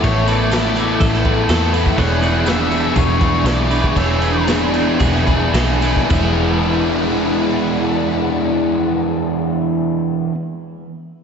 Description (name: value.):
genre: rock, shoegaze and dream pop.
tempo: 105-124 BPM.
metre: 4/4.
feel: straight.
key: E mixolydian.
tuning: A4 = 440 Hz.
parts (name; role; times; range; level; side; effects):
octave-fuzz lead guitar; melody; 0.0-4.4 s; C#5 to F#5; -26 LUFS; left 3 dB; distortion, diffuse ambient delay.
string machine, violas; sustained chords; 0.0-10.3 s; E3 to F#6; -24 LUFS; equal; ensemble chorus.
twelve-string electric guitar; arpeggios; 0.0-6.9 s; E4 to C#5; -28 LUFS; right 2 dB; wide subtle chorus, diffuse ambient delay.
biting overdriven guitar; riff; 0.0-10.3 s; E3 to A4; -20 LUFS; left 8 dB; analog chorus.
crunchy overdriven guitar; riff; 0.0-10.4 s; E2 to E4; -21 LUFS; right 8 dB; reverse reverb.
vintage muted picked electric bass; bass; 0.0-10.3 s; E1 to E2; -20 LUFS; equal; none.
raw garage drum kit; drums; 0.0-6.2 s; crash cymbal, kick drum, snare drum; -20 LUFS; equal; none.
tambourine; percussion; 0.0-6.4 s; none; -38 LUFS; right 10 dB; none.
room: wet lush hall reverb, RT60 1.9 s, studio ambience.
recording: dreamy mix soaked in reverb, nothing above 7.8 kHz.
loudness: -14 LUFS.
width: side -6 dB against mid.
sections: 0.0-6.1 A section; 6.1-10.7 B section.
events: slowing down 2.0-6.1.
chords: 0.0 Asus2; 2.0 E7.